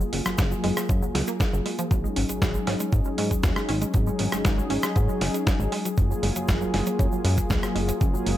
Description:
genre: nu-disco, nu disco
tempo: 118 BPM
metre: 4/4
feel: straight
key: unclear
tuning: A4 = 441 Hz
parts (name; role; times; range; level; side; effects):
- warm analog pad; accompaniment; 0.0-8.4 s; Gb3 to Ab4; -28 LUFS; left 1 dB; chorus, cassette tape, tape echo
- wide unison pluck; arpeggios; 0.0-8.4 s; F3 to Db4; -32 LUFS; right 2 dB; sidechain pumping, dub echo
- chorused synth bass; bass; 0.0-8.3 s; Gb1 to Ab2; -27 LUFS; equal; none
- egg shaker; percussion; 0.0-8.2 s; none; -39 LUFS; left 1 dB; none
- dusty soul sampler-style drum kit; drums; 0.1-8.4 s; hi-hat, rim click, snare drum; -30 LUFS; equal; none
- electronic kick drum; drums; 0.4-8.1 s; none; -24 LUFS; equal; none
room: digital ambience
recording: none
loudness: -22 LUFS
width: side -13 dB against mid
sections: 0.0-8.4 A section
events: filter sweep on analog synth pad 0.0-8.4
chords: 0.0 Gbmaj9; 1.9 Ab7sus4; 5.7 Gbmaj9

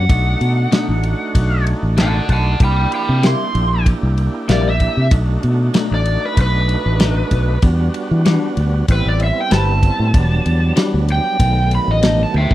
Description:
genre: straight-eighth soul blues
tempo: 96 BPM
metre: 4/4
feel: straight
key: unclear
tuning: A4 = 439 Hz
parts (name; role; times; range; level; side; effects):
- overdriven slide guitar; melody; 0.0-12.5 s; B4 to C6; -21 LUFS; right 1 dB; slapback echo
- tonewheel organ; accompaniment; 0.0-12.5 s; D#3 to G4; -24 LUFS; right 3 dB; slow rotary speaker, overdrive
- fingered electric bass; bass; 0.0-12.5 s; E1 to E3; -16 LUFS; equal; none
- warm soul drum kit; drums; 0.1-12.5 s; kick drum, ride cymbal, snare drum, toms; -16 LUFS; equal; none
- clean electric guitar; stabs; 0.7-12.2 s; B2 to B4; -22 LUFS; left 5 dB; phaser
room: small room ambience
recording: dry, close 1970s-style studio recording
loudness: -13 LUFS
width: side -14 dB against mid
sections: 0.0-12.5 A section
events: electric slide guitar solo 0.0-12.5; drum fill 12.3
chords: 0.1 B7#9; 2.6 C7; 5.1 B7#9; 7.6 Em9; 8.9 Am9; 10.1 Em9; 11.4 B7#9

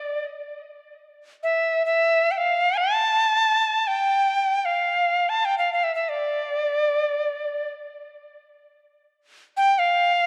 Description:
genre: world meditative, free-time meditation music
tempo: free time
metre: none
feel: none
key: D minor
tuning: A4 = 442 Hz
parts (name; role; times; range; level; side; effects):
- bright reedy Native American-style cedar flute; solo; 0.0-10.3 s; D5 to A5; -22 LUFS; equal; delay
room: wet recital hall reverb, RT60 1.4 s, small room ambience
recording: none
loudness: -22 LUFS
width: mono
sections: 0.0-10.3 A section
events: none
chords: none

